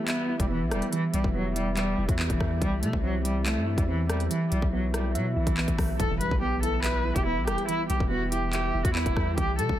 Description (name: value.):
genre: hip hop, drill.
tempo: 142 BPM.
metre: 4/4.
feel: half-time.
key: E minor.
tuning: A4 = 440 Hz.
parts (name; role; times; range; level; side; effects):
rich cello; melody; 0.0-9.8 s; E3 to B4; -29 LUFS; equal; low-pass filter.
soft electric-piano-like synth keys; accompaniment; 0.0-9.8 s; E3 to E5; -32 LUFS; right 3 dB; chorus, low-pass filter.
glass harmonica; sustained chords; 0.0-6.0 s; B3 to E5; -40 LUFS; left 4 dB; none.
drill drum kit; drums; 0.1-9.8 s; handclaps, hi-hat, kick drum, rim click; -30 LUFS; equal; none.
long sustained 808-style bass; bass; 0.4-9.8 s; E1 to C3; -29 LUFS; equal; none.
impact; sound effects; 6.0-7.7 s; none; -38 LUFS; left 1 dB; none.
room: digital ambience.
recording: dense, heavily limited modern master.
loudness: -24 LUFS.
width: side -12 dB against mid.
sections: 0.0-6.0 A section; 6.0-9.8 B section.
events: impact 6.0-7.7.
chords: 0.0 Em; 2.6 C; 4.3 Bsus4; 6.0 Em.